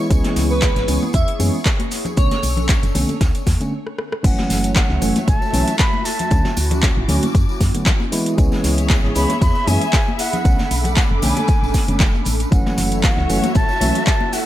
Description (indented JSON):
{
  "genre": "deep house",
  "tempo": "116 BPM",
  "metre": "4/4",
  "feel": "swing 54% on 16ths",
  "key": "F# minor",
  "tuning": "A4 = 440 Hz",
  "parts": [
    { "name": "hollow soft pad", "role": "sustained chords", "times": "0.0-14.5 s", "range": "A3 to A4", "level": "-28 LUFS", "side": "right 1 dB", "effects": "ensemble chorus, vintage 12-bit sampler grit, sidechain pumping" },
    { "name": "tine electric piano", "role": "stabs", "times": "0.0-14.0 s", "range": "D3 to E4", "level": "-23 LUFS", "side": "equal", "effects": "vintage 12-bit sampler grit, sidechain pumping, ping-pong delay" },
    { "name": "analog string pad", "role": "texture", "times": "0.0-3.7 s", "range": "C#5 to C#6", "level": "-36 LUFS", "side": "equal", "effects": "ensemble chorus" },
    { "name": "woody FM bass", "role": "bass", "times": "0.1-13.9 s", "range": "F#1 to F#2", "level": "-21 LUFS", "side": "equal", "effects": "none" },
    { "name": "deep house drum kit", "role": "drums", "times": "0.1-14.4 s", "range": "crash cymbal, handclaps, hi-hat, rim click", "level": "-24 LUFS", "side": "equal", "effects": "overdrive" },
    { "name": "electronic kick drum", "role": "drums", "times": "0.1-14.2 s", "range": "none", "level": "-17 LUFS", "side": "equal", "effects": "overdrive" },
    { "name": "vintage brush drum kit", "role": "drums", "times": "0.1-14.5 s", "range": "hi-hat, shaker, snare drum", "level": "-32 LUFS", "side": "right 1 dB", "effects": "sidechain pumping on hats, high-pass filter on hats, high-pass filter on snare, sidechain pumping on perc, high-pass filter on perc, high-pass filter on room" },
    { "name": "tambourine", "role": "percussion", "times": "0.1-14.4 s", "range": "none", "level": "-34 LUFS", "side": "left 2 dB", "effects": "none" },
    { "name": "congas", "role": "percussion", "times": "0.2-14.3 s", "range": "none", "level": "-29 LUFS", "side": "left 4 dB", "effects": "none" },
    { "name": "airy dreamy lead", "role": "melody", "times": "0.5-2.6 s", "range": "B4 to E5", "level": "-26 LUFS", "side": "right 1 dB", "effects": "chorus, ping-pong delay" },
    { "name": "breathy mellow silver concert flute", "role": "melody", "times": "4.2-14.5 s", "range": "F#5 to B5", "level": "-25 LUFS", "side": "equal", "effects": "ping-pong delay" },
    { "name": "warm studio string section", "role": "texture", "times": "4.2-14.5 s", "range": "A3 to D6", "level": "-28 LUFS", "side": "left 2 dB", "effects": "sidechain pumping" }
  ],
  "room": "light reverb, small room ambience",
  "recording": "none",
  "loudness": "-15 LUFS",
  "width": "side -13 dB against mid",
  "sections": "0.0-4.2 A section; 4.2-14.5 B section",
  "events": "stop 3.7-4.2; drum fill 3.9-4.2; drop 4.2-14.5",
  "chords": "0.0 C#m7; 2.2 Bm9; 4.2 F#m7; 6.3 Dmaj7; 8.1 C#m7; 10.4 Bm9; 12.5 F#m7",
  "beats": "| 0.10 0.62 1.14 1.66 | 2.17 2.69 3.21 3.73 | 4.24 4.76 5.28 5.79 | 6.31 6.83 7.35 7.86 | 8.38 8.90 9.42 9.93 | 10.45 10.97 11.48 12.00 | 12.52 13.04 13.55 14.07"
}